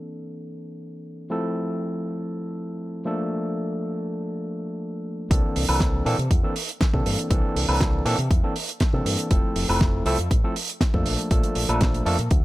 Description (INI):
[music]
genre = nu-disco, nu disco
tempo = 120 BPM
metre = 4/4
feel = straight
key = C mixolydian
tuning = A4 = 440 Hz
[part]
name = overdriven tine electric piano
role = accompaniment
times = 0.0-12.2 s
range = E3 to A4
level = -27 LUFS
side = equal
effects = sidechain pumping, dub echo
[part]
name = fingered electric bass with an envelope filter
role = bass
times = 5.3-12.4 s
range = F1 to C3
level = -25 LUFS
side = equal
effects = none
[part]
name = damped 70s drum kit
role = drums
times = 5.3-12.4 s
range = hi-hat, snare drum, woodblock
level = -26 LUFS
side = right 1 dB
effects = none
[part]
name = electronic kick drum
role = drums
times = 5.3-12.4 s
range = none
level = -22 LUFS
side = equal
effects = none
[sound]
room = little or no reverb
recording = none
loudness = -21 LUFS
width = side -17 dB against mid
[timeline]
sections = 0.0-5.3 A section; 5.3-12.4 B section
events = drop 5.3-12.4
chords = 0.0 C13; 1.3 Fmaj7; 3.1 Bbmaj7; 5.3 C13; 9.3 Fmaj7; 11.1 Bbmaj7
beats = 0.31 0.81 | 1.31 1.81 2.31 2.81 | 3.31 3.81 4.31 4.81 | 5.31 5.81 6.31 6.81 | 7.31 7.81 8.31 8.81 | 9.31 9.81 10.31 10.81 | 11.31 11.81 12.31